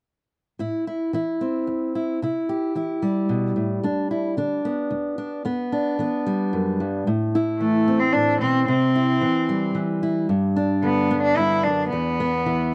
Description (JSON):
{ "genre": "folk", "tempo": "111 BPM", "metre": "3/4", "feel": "straight", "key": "unclear", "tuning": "A4 = 440 Hz", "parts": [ { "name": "fingerpicked steel-string acoustic guitar", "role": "accompaniment", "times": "0.6-12.7 s", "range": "D2 to G4", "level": "-24 LUFS", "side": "equal", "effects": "none" }, { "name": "rich cello", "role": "melody", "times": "7.6-12.7 s", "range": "A3 to E4", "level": "-23 LUFS", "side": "equal", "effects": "none" } ], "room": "small room ambience", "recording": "dry, close 1970s-style studio recording", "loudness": "-23 LUFS", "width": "mono", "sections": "0.6-7.1 A section; 7.1-12.7 B section", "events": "none", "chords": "0.6 Am; 2.2 C; 3.8 G; 5.5 Em; 7.1 Am; 8.7 C; 10.3 G; 11.9 E5", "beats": "| 0.60 1.14 1.68 | 2.22 2.76 3.30 | 3.84 4.38 4.91 | 5.45 5.99 6.53 | 7.07 7.61 8.15 | 8.68 9.22 9.76 | 10.30 10.84 11.38 | 11.91 12.45" }